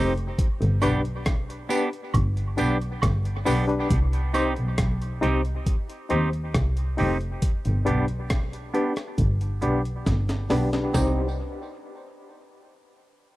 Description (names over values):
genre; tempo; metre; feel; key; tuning
dub reggae; 68 BPM; 4/4; straight; C harmonic minor; A4 = 440 Hz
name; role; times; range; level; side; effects
semi-hollow electric guitar; accompaniment; 0.0-11.2 s; B3 to G4; -30 LUFS; right 4 dB; vibrato effect, low-pass filter, dub echo
barky reed electric piano; stabs; 0.0-11.3 s; D4 to C5; -29 LUFS; left 3 dB; overdrive, fast tremolo, low-pass filter, dub echo
dark double bass; bass; 0.0-11.4 s; F1 to Eb2; -25 LUFS; equal; none
breakbeat sampler-style drum kit; drums; 0.2-11.2 s; hi-hat, kick drum, rim click, snare drum; -26 LUFS; equal; none
tambourine and woodblock; percussion; 0.8-4.5, 10.9-11.4 s; none; -34 LUFS; right 5 dB; dub echo
room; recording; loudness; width
little or no reverb; dry, close 1970s-style studio recording, lossy compression artefacts; -22 LUFS; side -17 dB against mid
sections
0.0-10.9 A section; 10.9-13.4 B section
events
filter sweep 0.0-10.9; part muted 3.9-10.9; drum fill 10.1-10.9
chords
0.4 G; 3.9 Cm; 7.4 G; 10.9 Cm